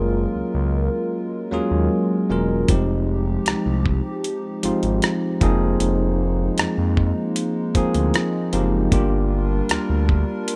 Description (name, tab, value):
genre	contemporary R&B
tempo	77 BPM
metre	4/4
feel	straight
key	unclear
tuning	A4 = 440 Hz
part	bell-like tine electric piano	accompaniment	0.0-10.6 s	F3 to Bb4	-25 LUFS	equal	none
part	hollow soft pad	sustained chords	0.0-10.6 s	F3 to Bb4	-29 LUFS	equal	chorus
part	smooth gliding synth bass	bass	0.0-10.2 s	E1 to F2	-24 LUFS	equal	none
part	dusty soul sampler-style drum kit	drums	2.7-10.6 s	hi-hat, kick drum, rim click	-24 LUFS	equal	none
room	digital ambience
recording	rough home demo mix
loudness	-21 LUFS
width	mono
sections	0.0-10.6 A section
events	none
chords	0.0 Gbmaj9; 2.7 Fm9; 5.4 Bb7sus4/F; 8.9 Gm7